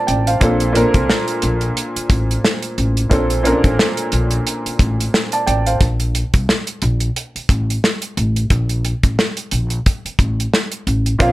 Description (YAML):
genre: hip hop, boom-bap hip-hop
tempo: 89 BPM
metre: 4/4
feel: swing 58% on 16ths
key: Bb major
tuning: A4 = 440 Hz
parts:
  - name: warm upright piano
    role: accompaniment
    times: 0.0-5.8, 11.2-11.3 s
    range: Bb2 to A5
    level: -18 LUFS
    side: right 1 dB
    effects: high-pass filter, low-pass filter
  - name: upright bass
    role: bass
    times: 0.1-11.3 s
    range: A1 to C2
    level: -18 LUFS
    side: equal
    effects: none
  - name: warm soul drum kit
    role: drums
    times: 0.1-11.3 s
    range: hi-hat, kick drum, snare drum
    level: -17 LUFS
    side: equal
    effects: none
room: light reverb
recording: none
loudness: -15 LUFS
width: side -17 dB against mid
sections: 0.0-11.2 A section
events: none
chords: 0.0 Bbmaj7; 5.8 N.C.